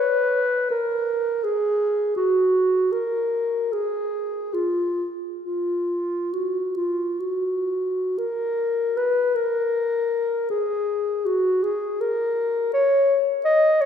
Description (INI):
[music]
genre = classical, free, expressive piece for unaccompanied clarinet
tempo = 55-86 BPM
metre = 3/4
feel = rubato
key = F# major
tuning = A4 = 439 Hz
[part]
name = mellow clarinet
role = solo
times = 0.0-13.9 s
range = E#4 to Eb5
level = -20 LUFS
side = left 1 dB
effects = none
[sound]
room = wet church reverb, RT60 2.7 s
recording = heard from further back in the room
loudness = -21 LUFS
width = side -8 dB against mid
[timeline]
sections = 0.0-8.2 A section; 8.2-13.9 B section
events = none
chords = none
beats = | 0.70 1.44 2.17 | 2.92 3.71 4.53 | 5.42 6.32 7.20 | 8.17 8.98 9.74 | 10.50 11.25 12.00 | 12.73 13.45